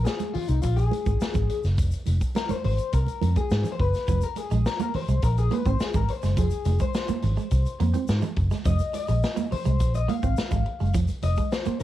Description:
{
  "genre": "funk",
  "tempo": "105 BPM",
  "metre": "4/4",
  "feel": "straight",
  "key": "F minor",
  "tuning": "A4 = 440 Hz",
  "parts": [
    { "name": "electric guitar at the edge of break-up", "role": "accompaniment", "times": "0.0-11.8 s", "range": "Eb4 to F5", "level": "-31 LUFS", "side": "left 8 dB", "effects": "lush chorus, cassette tape" },
    { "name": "vintage muted fingered electric bass", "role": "bass", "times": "0.0-11.7 s", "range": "F1 to Ab2", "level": "-23 LUFS", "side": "equal", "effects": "none" },
    { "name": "swinging big-band drum kit", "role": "drums", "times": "0.1-11.8 s", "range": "hi-hat, kick drum, snare drum", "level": "-29 LUFS", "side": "equal", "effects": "cassette tape" },
    { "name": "congas", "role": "percussion", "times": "0.1-11.8 s", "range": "none", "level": "-34 LUFS", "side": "right 9 dB", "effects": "none" },
    { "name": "tube shaker", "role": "percussion", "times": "0.1-11.8 s", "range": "none", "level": "-49 LUFS", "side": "left 10 dB", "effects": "none" },
    { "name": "clean electric guitar", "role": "riff", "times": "4.1-11.8 s", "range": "F3 to C4", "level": "-31 LUFS", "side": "right 8 dB", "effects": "analog chorus, cassette tape" }
  ],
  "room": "light reverb",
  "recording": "home recording on cassette",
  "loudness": "-22 LUFS",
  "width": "side -14 dB against mid",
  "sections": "0.0-11.8 A section",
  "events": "clean electric guitar solo 0.0-11.8",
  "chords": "0.0 Fm"
}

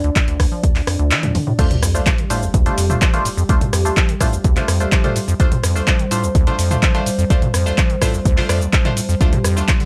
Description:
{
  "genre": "acid house",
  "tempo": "126 BPM",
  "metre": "4/4",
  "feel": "straight",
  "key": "D minor pentatonic",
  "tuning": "A4 = 440 Hz",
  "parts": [
    { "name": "dark analog pad", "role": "sustained chords", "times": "0.0-9.9 s", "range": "G3 to D5", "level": "-28 LUFS", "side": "equal", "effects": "chorus, sidechain pumping" },
    { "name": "acid bass, square", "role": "riff", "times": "0.0-9.9 s", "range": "C2 to F3", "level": "-23 LUFS", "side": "equal", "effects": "tube saturation" },
    { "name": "punchy analog drum machine", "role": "drums", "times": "0.0-9.9 s", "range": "cabasa, crash cymbal, handclaps, hi-hat, rim click, toms", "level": "-24 LUFS", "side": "equal", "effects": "none" },
    { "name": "electronic kick drum", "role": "drums", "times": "0.2-9.8 s", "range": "none", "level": "-18 LUFS", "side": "equal", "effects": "none" },
    { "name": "band-passed chord stab", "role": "stabs", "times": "1.6-9.6 s", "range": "A3 to D5", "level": "-26 LUFS", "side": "equal", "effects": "phaser, vintage 12-bit sampler grit, tape echo" },
    { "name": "sub drop", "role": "sound effects", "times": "1.6-3.5 s", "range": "none", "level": "-28 LUFS", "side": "equal", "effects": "none" }
  ],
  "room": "light reverb",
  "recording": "none",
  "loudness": "-17 LUFS",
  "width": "mono",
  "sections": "0.0-1.6 A section; 1.6-9.9 B section",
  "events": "kick drops out 1.1-1.6; band accent 1.1; drum fill 1.2-1.6; drop 1.6-9.9; impact 1.6-3.5",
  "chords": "0.0 Dm; 1.6 Dm7"
}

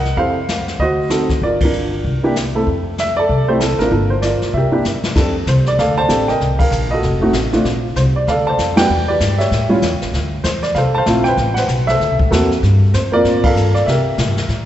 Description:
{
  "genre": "jazz piano trio",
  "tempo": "193 BPM",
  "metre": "4/4",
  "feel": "swing 61% on 8ths",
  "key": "F major",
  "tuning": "A4 = 442 Hz",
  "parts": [
    { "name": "warm baby grand piano", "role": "melody", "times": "0.0-14.7 s", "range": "G3 to A5", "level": "-16 LUFS", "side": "equal", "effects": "none" },
    { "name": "upright bass", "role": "bass", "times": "0.0-14.7 s", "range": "F1 to C3", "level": "-18 LUFS", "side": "equal", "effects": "none" },
    { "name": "jazz brush drum kit", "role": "drums", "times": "0.1-14.7 s", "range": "brushed snare drum, crash cymbal, hi-hat, kick drum, ride cymbal, snare drum", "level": "-22 LUFS", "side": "left 1 dB", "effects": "none" }
  ],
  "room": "wet church reverb, RT60 2.4 s",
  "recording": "recorded in a church or concert hall, nothing above 8.0 kHz",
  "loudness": "-13 LUFS",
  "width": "side -12 dB against mid",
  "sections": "0.0-5.2 A section; 5.2-14.7 B section",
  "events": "band accent 1.6, 6.6, 8.7, 11.5, 13.4; drum fill 4.8-5.2",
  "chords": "0.2 Fmaj7; 0.8 D7b9; 1.4 Gm7; 2.0 C9; 2.7 Fmaj7; 3.9 Gm7; 4.5 C7; 5.2 F69; 6.4 Cm7; 7.0 F7b9; 7.6 Bbmaj9; 8.9 Em7; 9.5 A7; 10.1 Dm9; 11.4 Amadd9; 12.0 D7b13; 12.6 Gm11; 13.9 C6"
}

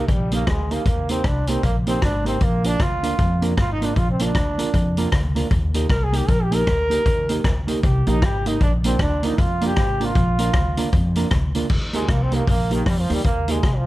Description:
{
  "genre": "ska",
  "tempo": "155 BPM",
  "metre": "4/4",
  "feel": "swing 61% on 8ths",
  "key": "Eb major",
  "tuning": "A4 = 439 Hz",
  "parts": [
    { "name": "brilliant trombone", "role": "melody", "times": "0.0-13.9 s", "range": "Eb3 to Bb4", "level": "-25 LUFS", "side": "right 1 dB", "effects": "none" },
    { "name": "mellow electric guitar", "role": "accompaniment", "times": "0.0-13.6 s", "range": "Bb3 to Bb4", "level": "-26 LUFS", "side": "right 3 dB", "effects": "dub echo" },
    { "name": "upright bass", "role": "bass", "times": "0.0-13.9 s", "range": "Ab1 to F2", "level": "-23 LUFS", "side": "equal", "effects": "none" },
    { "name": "street-band drum kit", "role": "drums", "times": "0.1-13.7 s", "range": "crash cymbal, hi-hat, kick drum, rim click", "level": "-22 LUFS", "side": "equal", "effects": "none" }
  ],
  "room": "studio reverb",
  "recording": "none",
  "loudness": "-18 LUFS",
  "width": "side -17 dB against mid",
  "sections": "0.0-11.7 A section; 11.7-13.9 A section",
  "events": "trombone solo 0.0-11.7, 11.7-13.9",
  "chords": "0.0 Eb; 2.4 Bb; 5.5 Eb; 8.6 Bb; 11.7 Eb"
}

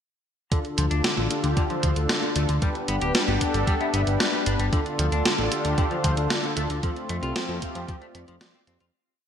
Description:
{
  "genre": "synthwave",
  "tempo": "114 BPM",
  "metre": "4/4",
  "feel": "straight",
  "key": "D dorian",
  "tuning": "A4 = 440 Hz",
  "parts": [
    { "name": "warm analog pad", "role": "sustained chords", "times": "0.5-8.9 s", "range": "D3 to A4", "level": "-30 LUFS", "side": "left 2 dB", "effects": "chorus, sidechain pumping" },
    { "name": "semi-hollow electric guitar", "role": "riff", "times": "0.5-8.8 s", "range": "D3 to G4", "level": "-33 LUFS", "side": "left 3 dB", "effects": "wide subtle chorus, low-pass filter, ping-pong delay" },
    { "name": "mellow synth brass", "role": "stabs", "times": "0.5-8.8 s", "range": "C4 to E5", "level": "-30 LUFS", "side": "right 1 dB", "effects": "chorus, ping-pong delay" },
    { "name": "electronic kick drum", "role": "drums", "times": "0.5-8.0 s", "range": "none", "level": "-26 LUFS", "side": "equal", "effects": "none" },
    { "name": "gated 80s digital drum machine", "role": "drums", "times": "0.5-8.9 s", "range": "hi-hat, snare drum", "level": "-27 LUFS", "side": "equal", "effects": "gated reverb, gated reverb snare" },
    { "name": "fat analog bass", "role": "bass", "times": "0.8-8.9 s", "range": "D1 to F2", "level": "-25 LUFS", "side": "equal", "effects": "none" }
  ],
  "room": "moderate lush hall reverb, RT60 1.9 s",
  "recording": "bright 1980s-style digital production",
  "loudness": "-22 LUFS",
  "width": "side -8 dB against mid",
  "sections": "0.5-8.9 verse",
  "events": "fade-out 6.1-8.9",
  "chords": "0.5 Dm; 2.6 G; 4.7 Dm; 6.8 F"
}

